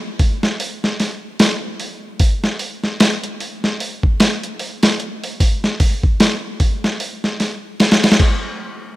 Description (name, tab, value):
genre	trip hop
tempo	75 BPM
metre	4/4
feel	swing 58% on 16ths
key	none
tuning	none
part	dusty soul sampler-style drum kit	drums	0.2-8.4 s	crash cymbal, hi-hat, kick drum, snare drum	-15 LUFS	equal	overdrive
room	light reverb, digital ambience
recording	rough home demo mix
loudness	-15 LUFS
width	side -17 dB against mid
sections	0.0-8.6 A section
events	none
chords	none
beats	0.59 1.39 | 2.19 2.99 3.79 4.59 | 5.39 6.19 6.99 7.79